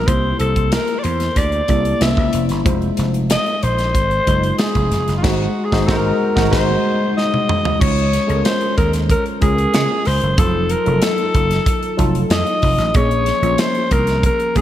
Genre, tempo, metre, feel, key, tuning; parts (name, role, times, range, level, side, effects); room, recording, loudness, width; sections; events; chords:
polished 1980s jazz-funk pop; 93 BPM; 4/4; straight; Db major; A4 = 440 Hz
growling alto saxophone; melody; 0.0-14.6 s; F4 to E5; -20 LUFS; left 1 dB
tine electric piano; accompaniment; 0.0-14.6 s; F3 to Eb5; -21 LUFS; left 1 dB; analog chorus
vintage slap bass; bass; 0.0-14.6 s; F1 to Db3; -19 LUFS; right 1 dB
modern studio drum kit; drums; 0.1-14.6 s; crash cymbal, hi-hat, kick drum, snare drum, toms; -20 LUFS; equal; gated reverb
moderate lush hall reverb, RT60 2.9 s; bright 1980s-style digital production; -14 LUFS; side -12 dB against mid
0.0-7.8 A section; 7.8-14.6 B section
band accent 5.2-7.8; drum fill 7.2-7.8
0.1 C7; 2.0 C7b9; 2.7 Fm7; 5.2 Ab7; 7.8 Db; 10.4 F7b9; 12.9 Bbm7